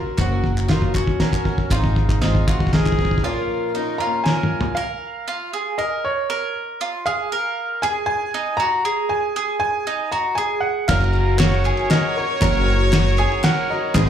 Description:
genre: indie folk with a building arrangement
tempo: 118 BPM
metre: 3/4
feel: straight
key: Bb minor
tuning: A4 = 440 Hz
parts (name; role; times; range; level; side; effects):
- mellow trumpet; second line; 0.0-4.5, 10.9-14.1 s; Db4 to Db5; -27 LUFS; right 1 dB; slapback echo
- dark grand piano; accompaniment; 0.0-4.8, 10.9-14.1 s; Gb1 to Eb5; -30 LUFS; right 4 dB; slapback echo
- picked twelve-string acoustic guitar; accompaniment; 0.0-4.8, 10.9-14.1 s; Gb2 to Bb4; -27 LUFS; left 6 dB; slapback echo
- mandolin; arpeggios; 0.0-14.1 s; Eb4 to Bb4; -25 LUFS; right 4 dB; slapback echo
- upright bass; bass; 0.2-2.5, 10.9-14.1 s; Gb1 to Ab1; -19 LUFS; equal; none
- cloth-damped thuddy drum kit; drums; 0.2-4.7, 10.9-14.1 s; hi-hat, kick drum, ride cymbal, snare drum, toms; -21 LUFS; equal; none
- group handclap; percussion; 0.2-3.0, 10.9-14.1 s; none; -32 LUFS; left 3 dB; none
- warm upright piano; melody; 4.0-14.1 s; Db5 to Bb5; -24 LUFS; equal; slapback echo
room: small room ambience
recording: live gig heard through the venue's PA, club reverb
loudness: -18 LUFS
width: side -9 dB against mid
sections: 0.0-4.8 A section; 4.8-14.1 B section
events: build-up 0.0-4.8; drum fill 0.0-3.2, 4.3-4.8; break 3.2-4.8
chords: 0.0 Gb; 1.7 Ab; 3.2 Bbm; 4.8 Bb5; 7.8 Ab5; 10.9 Gb

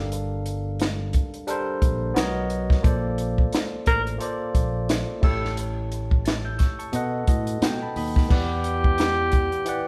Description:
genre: lush 1970s-style soul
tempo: 88 BPM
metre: 4/4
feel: swing 58% on 16ths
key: unclear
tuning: A4 = 440 Hz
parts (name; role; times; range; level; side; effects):
- barky tine electric piano; accompaniment; 0.0-9.9 s; B2 to A6; -32 LUFS; equal; overdrive
- modern bright fingered electric bass; bass; 0.0-9.5 s; G1 to B2; -31 LUFS; equal; none
- compact cocktail drum kit; drums; 0.1-9.8 s; crash cymbal, hi-hat, kick drum, snare drum; -25 LUFS; equal; none
- breathy alto saxophone; melody; 3.9-9.9 s; G4 to Bb4; -27 LUFS; equal; none
room: moderate large studio reverb, RT60 1.2 s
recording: band playing live in one room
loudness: -24 LUFS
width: mono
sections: 0.0-8.3 A section; 8.3-9.9 A section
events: tine electric piano fill 6.9-8.3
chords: 0.0 Gm7; 2.2 Bmaj7; 2.8 Bbmaj7; 5.2 A7; 6.9 B7; 8.3 Em7

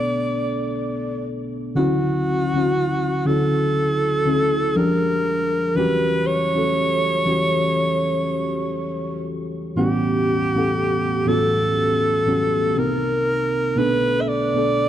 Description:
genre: R&B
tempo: 60 BPM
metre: 4/4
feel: swing 58% on 16ths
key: E dorian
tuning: A4 = 435 Hz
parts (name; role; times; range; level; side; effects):
- breathy alto saxophone; melody; 0.0-14.9 s; F#4 to E5; -21 LUFS; right 1 dB; none
- muted felt-like synth keys; accompaniment; 0.0-14.9 s; A2 to F#5; -21 LUFS; equal; chorus
room: moderate lush hall reverb, RT60 2.4 s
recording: dark, warm production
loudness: -18 LUFS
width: side -11 dB against mid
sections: 0.0-14.9 A section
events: none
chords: 0.0 Bm7; 1.8 Dmaj9; 4.8 Fm69; 5.8 Em69; 9.8 A13; 12.8 Cm7; 13.8 Bm7

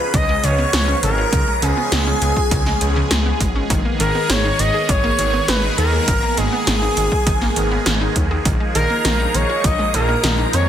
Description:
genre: synthwave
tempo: 101 BPM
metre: 4/4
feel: straight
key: unclear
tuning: A4 = 443 Hz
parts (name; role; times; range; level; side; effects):
- expressive portamento lead; melody; 0.0-10.7 s; Ab4 to Eb5; -21 LUFS; equal; analog chorus, tape echo
- string machine, violins; second line; 0.0-10.7 s; Ab5 to Eb6; -28 LUFS; equal; ensemble chorus, digital delay
- phased analog pad; sustained chords; 0.0-10.7 s; Eb3 to Ab4; -24 LUFS; equal; phaser, chorus, sidechain pumping
- analog pluck; arpeggios; 0.0-10.7 s; Db3 to Ab4; -26 LUFS; right 2 dB; chorus, cassette tape, digital delay
- wide detuned saw bass; bass; 0.1-10.7 s; Ab1 to F2; -21 LUFS; equal; chorus
- 80s electronic pad drums; drums; 0.1-10.7 s; hi-hat, snare drum; -22 LUFS; equal; overdrive
- electronic kick drum; drums; 0.1-9.8 s; none; -20 LUFS; equal; overdrive
room: light reverb, digital ambience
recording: dense, heavily limited modern master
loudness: -15 LUFS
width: side -10 dB against mid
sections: 0.0-10.7 A section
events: none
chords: 0.0 Db7; 3.7 Abmadd9; 8.5 Bb7sus4

